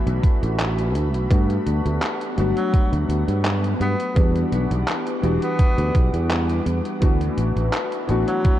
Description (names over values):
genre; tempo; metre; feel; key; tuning
vaporwave; 84 BPM; 4/4; swing 53% on 16ths; D major; A4 = 445 Hz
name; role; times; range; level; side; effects
warm electric grand piano; accompaniment; 0.0-8.6 s; E3 to F#4; -25 LUFS; left 2 dB; lush chorus, vintage 12-bit sampler grit, tape echo
soft string machine; sustained chords; 0.0-8.6 s; B3 to D6; -31 LUFS; equal; ensemble chorus
sustaining fretless electric bass; bass; 0.1-8.5 s; E1 to G2; -22 LUFS; equal; none
detuned 8-bit digital drum machine; drums; 0.1-8.6 s; handclaps, hi-hat; -29 LUFS; equal; overdrive, gated reverb
electronic kick drum; drums; 0.2-8.6 s; none; -17 LUFS; equal; overdrive
bright tenor saxophone; melody; 2.6-8.6 s; F#3 to B3; -30 LUFS; right 1 dB; tape echo
room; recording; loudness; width
little or no reverb; cassette tape; -18 LUFS; side -13 dB against mid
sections
0.0-8.6 A section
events
none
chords
0.0 D69; 1.3 Gmaj7; 4.2 Em9; 7.0 D69